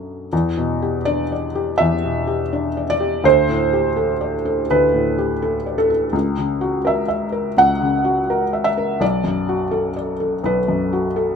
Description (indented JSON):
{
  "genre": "classical, contemporary piece for solo felt piano",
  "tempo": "83 BPM",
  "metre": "4/4",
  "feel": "rubato",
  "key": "E minor",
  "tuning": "A4 = 443 Hz",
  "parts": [
    { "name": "felt-muted upright piano", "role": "solo", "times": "0.0-11.4 s", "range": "B1 to F#5", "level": "-17 LUFS", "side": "equal", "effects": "none" }
  ],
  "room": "light reverb",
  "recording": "minimal, uncompressed stereo recording",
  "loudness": "-17 LUFS",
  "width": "side -6 dB against mid",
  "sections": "0.3-11.4 A section",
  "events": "none",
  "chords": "0.3 Em7; 3.2 D7sus4; 6.1 F#7/C#; 9.0 Bm7"
}